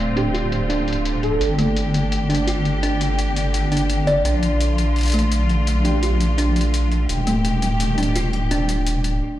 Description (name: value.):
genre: half-time drum and bass.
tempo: 169 BPM.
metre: 4/4.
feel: swing 54% on 16ths, half-time.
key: unclear.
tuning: A4 = 439 Hz.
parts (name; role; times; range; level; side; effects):
bright studio string section; sustained chords; 0.0-9.2 s; D3 to G4; -26 LUFS; left 2 dB; low-pass filter.
deep soft wobble bass; bass; 0.0-9.2 s; D1 to Bb1; -20 LUFS; equal; chorus.
airy dreamy lead; melody; 0.2-1.4, 5.8-6.0 s; G4 to A4; -28 LUFS; right 2 dB; chorus, vintage 12-bit sampler grit, ping-pong delay.
kalimba; arpeggios; 0.2-9.2 s; A3 to D5; -23 LUFS; right 2 dB; low-pass filter, ping-pong delay.
electronic hi-hat; drums; 0.2-9.1 s; none; -30 LUFS; left 3 dB; low-pass filter on hats, low-pass filter on perc, low-pass filter on snare, low-pass filter on toms.
room: light reverb, digital ambience.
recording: played on a big sound system in a bare room, large studio reverb.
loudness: -17 LUFS.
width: side -13 dB against mid.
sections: 0.0-9.4 A section.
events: filter sweep on kalimba 0.0-9.4; break 9.2.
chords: 0.0 Dm7; 1.4 G5; 4.2 Bb; 7.1 Eb.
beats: 0.34 0.70 1.05 | 1.41 1.76 2.12 2.47 | 2.83 3.18 3.54 3.90 | 4.25 4.61 4.96 5.32 | 5.67 6.03 6.38 6.74 | 7.09 7.45 7.80 8.15 | 8.51 8.87 9.22.